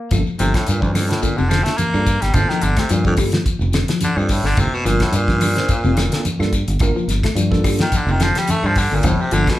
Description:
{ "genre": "afrobeat", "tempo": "108 BPM", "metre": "4/4", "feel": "swing 54% on 16ths", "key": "G minor", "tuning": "A4 = 440 Hz", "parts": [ { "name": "tine electric piano", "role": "accompaniment", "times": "0.1-9.5 s", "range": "Bb3 to C5", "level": "-26 LUFS", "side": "right 2 dB", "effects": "medium stereo tremolo" }, { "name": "electric guitar at the edge of break-up", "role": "arpeggios", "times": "0.1-9.6 s", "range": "C3 to A3", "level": "-24 LUFS", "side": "left 6 dB", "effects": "none" }, { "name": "fingered electric bass", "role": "bass", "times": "0.1-9.4 s", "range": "F1 to G2", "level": "-20 LUFS", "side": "equal", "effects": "none" }, { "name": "damped 70s drum kit", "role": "drums", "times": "0.1-9.6 s", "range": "hi-hat, kick drum, snare drum", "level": "-21 LUFS", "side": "equal", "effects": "none" }, { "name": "claves", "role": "percussion", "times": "0.1-9.6 s", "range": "none", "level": "-35 LUFS", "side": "left 2 dB", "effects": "none" }, { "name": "congas", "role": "percussion", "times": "0.1-9.2 s", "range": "none", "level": "-25 LUFS", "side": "right 2 dB", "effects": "none" }, { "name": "shekere", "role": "percussion", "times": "0.1-9.6 s", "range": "none", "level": "-28 LUFS", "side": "left 3 dB", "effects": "none" }, { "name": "raspy baritone saxophone", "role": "melody", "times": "0.4-9.6 s", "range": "D2 to Bb3", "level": "-20 LUFS", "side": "equal", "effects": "none" } ], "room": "moderate large studio reverb, RT60 0.8 s", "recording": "band playing live in one room", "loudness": "-15 LUFS", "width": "side -15 dB against mid", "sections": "0.1-9.6 A section", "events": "baritone saxophone solo 0.1-9.6", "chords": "0.1 Gm9" }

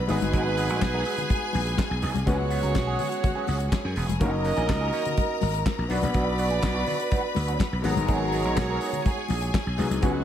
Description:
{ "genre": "disco", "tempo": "124 BPM", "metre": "4/4", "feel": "straight", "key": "unclear", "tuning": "A4 = 441 Hz", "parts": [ { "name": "clear symphonic string section", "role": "second line", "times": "0.0-10.2 s", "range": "F#4 to B5", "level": "-31 LUFS", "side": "left 2 dB", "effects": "none" }, { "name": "warm grand piano", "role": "accompaniment", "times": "0.0-10.2 s", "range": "F#3 to B4", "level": "-32 LUFS", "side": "left 4 dB", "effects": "none" }, { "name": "slap bass", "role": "bass", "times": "0.0-10.2 s", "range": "E1 to F#2", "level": "-27 LUFS", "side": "equal", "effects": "none" }, { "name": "electric guitar at the edge of break-up", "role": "accompaniment", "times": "0.1-10.2 s", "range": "D#3 to A#4", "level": "-35 LUFS", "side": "right 6 dB", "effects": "wah" }, { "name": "warm horn section", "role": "stabs", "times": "0.1-10.2 s", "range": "F#4 to D#5", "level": "-31 LUFS", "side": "right 5 dB", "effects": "none" }, { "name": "damped 70s drum kit", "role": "drums", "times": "0.1-10.1 s", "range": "handclaps, hi-hat, kick drum, snare drum", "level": "-28 LUFS", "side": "equal", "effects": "none" }, { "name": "congas", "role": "percussion", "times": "0.2-10.1 s", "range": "none", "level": "-35 LUFS", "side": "left 8 dB", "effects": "none" } ], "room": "light reverb, small room ambience", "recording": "none", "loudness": "-23 LUFS", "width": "side -10 dB against mid", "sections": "0.0-10.2 A section", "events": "none", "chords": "0.1 G#m7; 2.3 C#7sus4; 4.2 F#6; 5.9 Bm; 7.8 G#m7" }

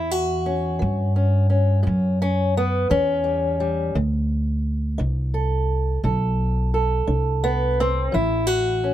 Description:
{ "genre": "acoustic country blues, solo or duo", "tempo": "57 BPM (dotted quarters)", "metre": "12/8", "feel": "straight", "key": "A mixolydian", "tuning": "A4 = 440 Hz", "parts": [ { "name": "fingerpicked old ladder-braced acoustic guitar", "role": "melody", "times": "0.0-8.9 s", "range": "A2 to A4", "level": "-22 LUFS", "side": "equal", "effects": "none" }, { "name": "upright bass", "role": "bass", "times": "0.0-8.9 s", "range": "A1 to G2", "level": "-22 LUFS", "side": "equal", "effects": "none" } ], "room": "little or no reverb", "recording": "close, detailed microphones", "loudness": "-19 LUFS", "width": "side -12 dB against mid", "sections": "0.0-8.9 A section", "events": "steel-string acoustic guitar solo 0.0-8.9", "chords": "0.0 A7; 3.9 D5; 8.1 A5" }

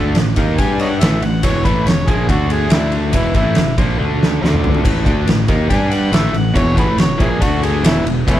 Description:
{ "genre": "blues rock power trio and southern rock", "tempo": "140 BPM", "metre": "4/4", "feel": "straight", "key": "unclear", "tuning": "A4 = 440 Hz", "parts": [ { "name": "overdriven harmonica", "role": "melody", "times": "0.0-8.4 s", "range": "A3 to G#5", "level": "-22 LUFS", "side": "equal", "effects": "none" }, { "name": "cranked stack guitar", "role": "riff", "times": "0.0-8.4 s", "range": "E2 to G4", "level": "-19 LUFS", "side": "equal", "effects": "overdrive" }, { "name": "modern bright fingered electric bass", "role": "bass", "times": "0.0-8.4 s", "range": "E1 to G2", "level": "-19 LUFS", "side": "equal", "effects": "none" }, { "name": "oversized low-tuned drum kit", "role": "drums", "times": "0.1-8.4 s", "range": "crash cymbal, kick drum, ride cymbal, snare drum, toms", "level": "-16 LUFS", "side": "equal", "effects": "none" } ], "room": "little or no reverb", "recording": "none", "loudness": "-13 LUFS", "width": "side -12 dB against mid", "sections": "0.0-8.4 A section", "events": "harmonica solo 0.0-8.4; drum fill 4.0-4.9", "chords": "0.0 A5; 0.6 G5; 1.0 A5; 1.4 E5; 2.3 D5; 3.1 E5; 4.0 D5; 4.9 A5; 5.7 G5; 6.1 A5; 6.6 E5; 7.4 D5; 7.8 E5" }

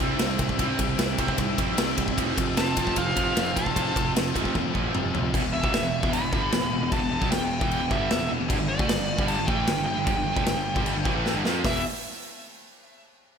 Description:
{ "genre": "heavy metal", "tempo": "152 BPM", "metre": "4/4", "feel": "straight", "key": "E phrygian", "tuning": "A4 = 445 Hz", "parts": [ { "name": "biting overdriven guitar", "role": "riff", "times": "0.0-11.8 s", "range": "E2 to F4", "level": "-32 LUFS", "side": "equal", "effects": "none" }, { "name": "high-gain distorted guitar", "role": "riff", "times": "0.0-11.8 s", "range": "E2 to F4", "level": "-31 LUFS", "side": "right 10 dB", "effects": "distortion" }, { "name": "tight distorted guitar", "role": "riff", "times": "0.0-11.8 s", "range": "E2 to F4", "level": "-33 LUFS", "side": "left 10 dB", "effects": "distortion" }, { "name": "fuzz picked electric bass", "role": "bass", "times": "0.0-11.8 s", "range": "E1 to F2", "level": "-32 LUFS", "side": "equal", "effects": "overdrive" }, { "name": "big rock drum kit", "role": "drums", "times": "0.2-11.7 s", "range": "crash cymbal, hi-hat, kick drum, ride cymbal, snare drum, toms", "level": "-27 LUFS", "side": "equal", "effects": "none" }, { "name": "smooth overdriven lead guitar", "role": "melody", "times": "2.6-11.8 s", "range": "D5 to B5", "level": "-30 LUFS", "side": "equal", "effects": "none" }, { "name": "smooth overdriven lead guitar", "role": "second line", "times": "2.6-4.1 s", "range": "C4 to F4", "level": "-35 LUFS", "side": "right 2 dB", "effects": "none" } ], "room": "moderate lush hall reverb, RT60 2.0 s, studio reverb", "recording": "big arena sound", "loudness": "-22 LUFS", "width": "side -7 dB against mid", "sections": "0.0-5.3 A section; 5.3-11.6 B section; 11.6-13.2 C section", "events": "drum fill 4.5-5.3, 11.3-11.6", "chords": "0.0 C; 2.2 F; 5.3 Em; 8.5 G5; 11.6 E5" }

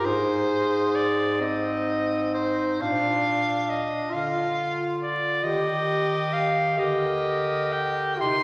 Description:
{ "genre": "classical, lyrical piece for single-reed quartet", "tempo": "44 BPM (dotted quarters)", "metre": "6/8", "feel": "uneven beats, rubato", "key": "Eb major", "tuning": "A4 = 439 Hz", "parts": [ { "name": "bright soprano saxophone", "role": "melody", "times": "0.0-8.4 s", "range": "C5 to C6", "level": "-28 LUFS", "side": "equal", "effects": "none" }, { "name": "warm clarinet", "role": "second line", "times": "0.0-8.4 s", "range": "D4 to Bb4", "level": "-33 LUFS", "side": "equal", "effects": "none" }, { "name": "warm tenor saxophone", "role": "accompaniment", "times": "0.0-8.4 s", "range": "C4 to Ab4", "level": "-30 LUFS", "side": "equal", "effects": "none" }, { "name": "mellow bass clarinet", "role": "bass", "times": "0.0-8.4 s", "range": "Ab2 to Eb3", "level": "-36 LUFS", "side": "equal", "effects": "none" } ], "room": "wet concert hall reverb, RT60 1.8 s", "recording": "vinyl crackle", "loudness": "-25 LUFS", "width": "mono", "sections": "0.0-8.4 A section", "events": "none", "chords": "0.0 Ab; 2.8 Bb; 5.4 Eb" }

